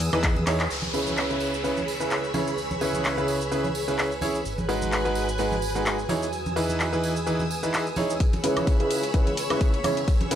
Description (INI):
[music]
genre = piano house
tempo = 128 BPM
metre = 4/4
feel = swing 55% on 16ths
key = C# minor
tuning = A4 = 440 Hz
[part]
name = string machine, violins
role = sustained chords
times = 0.0-10.4 s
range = B4 to F#6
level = -34 LUFS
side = left 1 dB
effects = ensemble chorus, sidechain pumping
[part]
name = fat analog bass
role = bass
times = 0.0-10.4 s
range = G#1 to E2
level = -33 LUFS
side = left 1 dB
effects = sidechain pumping, high-pass filter
[part]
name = house drum kit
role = drums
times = 0.0-10.4 s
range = crash cymbal, handclaps, hi-hat, shaker, woodblock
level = -30 LUFS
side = left 1 dB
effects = none
[part]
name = tambourine and congas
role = percussion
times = 0.0-10.4 s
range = none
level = -34 LUFS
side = right 2 dB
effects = none
[part]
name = granular cloud pad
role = texture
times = 0.0-10.4 s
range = F#4 to G#5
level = -33 LUFS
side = right 1 dB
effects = built-in reverb, sidechain pumping
[part]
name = clear concert grand piano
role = riff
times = 0.1-10.4 s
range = C#3 to C#5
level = -26 LUFS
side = right 1 dB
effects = sidechain pumping, low-pass filter, analog delay
[part]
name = electronic kick drum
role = drums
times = 0.2-0.3, 8.2-10.2 s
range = none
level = -22 LUFS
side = equal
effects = none
[part]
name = downlifter and riser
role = sound effects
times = 0.7-4.5, 9.0-10.4 s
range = none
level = -36 LUFS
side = left 1 dB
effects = none
[sound]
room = little or no reverb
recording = dry, gritty hardware recording, transformer saturation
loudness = -23 LUFS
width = side -10 dB against mid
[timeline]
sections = 0.7-8.2 A section; 8.2-10.4 B section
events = drum fill 0.5; band accent 0.6; filter sweep on grand piano 0.7-8.2, 8.2-10.4; build-up 8.2-10.4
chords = 0.0 Emaj7; 0.7 C#m7; 4.5 G#m7; 6.1 Emaj7; 8.2 C#m7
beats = 0.23 | 0.70 1.17 1.64 2.11 | 2.58 3.05 3.52 3.98 | 4.45 4.92 5.39 5.86 | 6.33 6.80 7.26 7.73 | 8.20 8.67 9.14 9.61 | 10.08